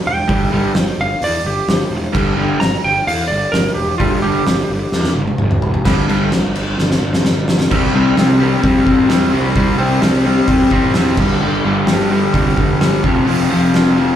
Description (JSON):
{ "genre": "garage rock duo or trio", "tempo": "129 BPM", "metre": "4/4", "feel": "straight", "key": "unclear", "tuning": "A4 = 442 Hz", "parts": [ { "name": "clean lap steel guitar", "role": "melody", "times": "0.1-5.1 s", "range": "F4 to Bb5", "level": "-19 LUFS", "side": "right 2 dB", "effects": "slapback echo" }, { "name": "fuzz picked electric bass", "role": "bass", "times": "0.1-14.1 s", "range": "E1 to F2", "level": "-20 LUFS", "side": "equal", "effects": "overdrive" }, { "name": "crunchy overdriven guitar", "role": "riff", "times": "0.3-14.2 s", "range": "F2 to C4", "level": "-14 LUFS", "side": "left 1 dB", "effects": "slapback echo" }, { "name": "oversized low-tuned drum kit", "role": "drums", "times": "0.3-13.9 s", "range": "crash cymbal, hi-hat, kick drum, ride cymbal, snare drum, toms", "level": "-17 LUFS", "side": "equal", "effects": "none" } ], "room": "light reverb", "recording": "live gig heard through the venue's PA, club ambience", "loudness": "-12 LUFS", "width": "side -10 dB against mid", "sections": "0.0-5.9 A section; 5.9-7.7 B section; 7.7-14.2 C section", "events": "electric slide guitar solo 0.0-5.9; drum fill 4.9-5.9, 6.8-7.7", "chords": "0.0 G5; 7.7 C5; 11.2 G5; 13.0 F5", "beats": "| 0.30 0.76 1.23 1.69 | 2.15 2.62 3.08 3.54 | 4.01 4.47 4.93 5.40 | 5.86 6.32 6.79 7.25 | 7.71 8.17 8.64 9.10 | 9.56 10.03 10.49 10.96 | 11.42 11.88 12.35 12.81 | 13.28 13.74" }